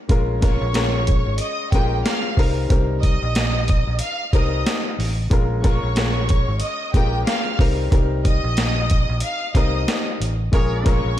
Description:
hip hop, boom-bap hip-hop; 92 BPM; 4/4; swing 58% on 16ths; Bb dorian; A4 = 440 Hz
warm upright piano; accompaniment; 0.1-11.2 s; G3 to Bb4; -26 LUFS; left 3 dB; high-pass filter, low-pass filter
fingered electric bass; bass; 0.1-11.2 s; Ab1 to C2; -22 LUFS; equal
boom bap sampler-style drum kit; drums; 0.1-11.0 s; hi-hat, kick drum, snare drum; -20 LUFS; equal
rich studio violin section; melody; 0.4-11.2 s; G4 to F6; -26 LUFS; equal; high-pass filter, low-pass filter, tape echo
clear horn section; stabs; 10.5-11.0 s; Ab4 to Db5; -28 LUFS; equal; high-pass filter, low-pass filter, tape echo
light reverb, small room ambience; -17 LUFS; side -12 dB against mid
0.1-11.2 A section
0.1 Bbm7; 2.4 Cm7; 5.3 Bbm7; 7.6 Cm7; 10.5 Bbm7

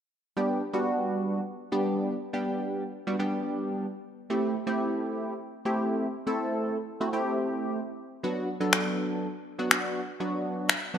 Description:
dance-pop; 122 BPM; 4/4; straight; G major; A4 = 440 Hz
funky polysynth comp; accompaniment; 0.4-11.0 s; F#3 to A4; -28 LUFS; equal; chorus
electronic finger snaps; drums; 8.7-10.8 s; -24 LUFS; left 3 dB
moderate lush hall reverb, RT60 1.9 s; bright 1980s-style digital production; -27 LUFS; side -9 dB against mid
0.4-11.0 A section
0.4 G; 4.3 Am7; 8.2 Bm

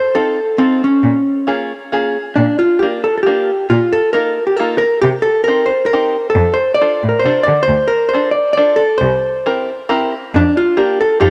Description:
musette waltz; 136 BPM; 3/4; swing 53% on 8ths; Bb major; A4 = 440 Hz
vintage hollow-body jazz guitar; melody; 0.0-11.3 s; C4 to D5; -15 LUFS; equal; cassette tape
open-back banjo; accompaniment; 0.1-11.3 s; Bb3 to C5; -22 LUFS; equal; cassette tape
warm cello; bass; 1.0-11.3 s; C2 to D3; -19 LUFS; equal
moderate lush hall reverb, RT60 2.6 s; home recording on cassette; -14 LUFS; mono
0.0-2.4 A section; 2.4-11.3 B section
0.0 F7; 1.0 Bbm7; 2.4 Bb; 3.7 Ebsus2; 5.0 Cm; 6.4 F6; 7.7 Dm7; 9.0 C7; 10.3 Bb/F

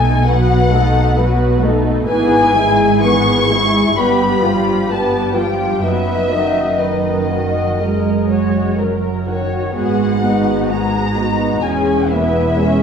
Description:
classical, slow romantic movement for string orchestra; 60-67 BPM; 4/4; rubato; B major; A4 = 437 Hz
muted studio violin section; melody; 0.0-12.8 s; D#5 to C#6; -19 LUFS; left 3 dB
muted symphonic violin section; second line; 0.0-12.8 s; C#4 to D#5; -19 LUFS; left 2 dB
muted studio viola section; accompaniment; 0.0-12.8 s; D#3 to D#4; -18 LUFS; right 2 dB
muted studio cello section; bass; 0.0-12.8 s; E2 to B2; -21 LUFS; right 2 dB
muted studio double bass section; bass; 0.0-12.8 s; E1 to B1; -22 LUFS; right 1 dB
wet recital hall reverb, RT60 1.3 s; heard from further back in the room; -13 LUFS; side -7 dB against mid
0.0-12.8 A section
0.0 B7; 2.1 E/G#; 4.0 G7; 5.8 B/F#; 7.8 F#; 9.8 G#m7; 11.6 E6

